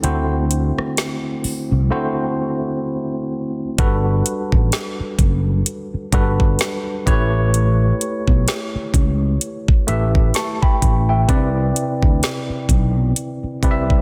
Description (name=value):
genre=contemporary R&B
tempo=64 BPM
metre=4/4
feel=swing 58% on 16ths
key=G major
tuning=A4 = 441 Hz
part: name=tine electric piano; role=accompaniment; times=0.0-14.0 s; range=C3 to C#6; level=-24 LUFS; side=equal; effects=overdrive
part: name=sustaining fretless electric bass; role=bass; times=0.0-14.0 s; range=F#1 to D2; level=-20 LUFS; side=equal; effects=ensemble chorus
part: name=smooth R&B drum kit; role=drums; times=0.0-14.0 s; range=hi-hat, kick drum, rim click, snare drum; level=-20 LUFS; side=equal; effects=none
room=little or no reverb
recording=dense, heavily limited modern master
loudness=-19 LUFS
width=mono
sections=0.0-3.8 A section; 3.8-14.0 B section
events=drums muted 1.9-3.8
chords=0.0 D13; 3.8 Gmaj9; 7.1 A9; 11.3 Cmaj9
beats=| 0.04 0.97 1.91 2.85 | 3.79 4.72 5.66 6.60 | 7.54 8.47 9.41 10.35 | 11.29 12.22 13.16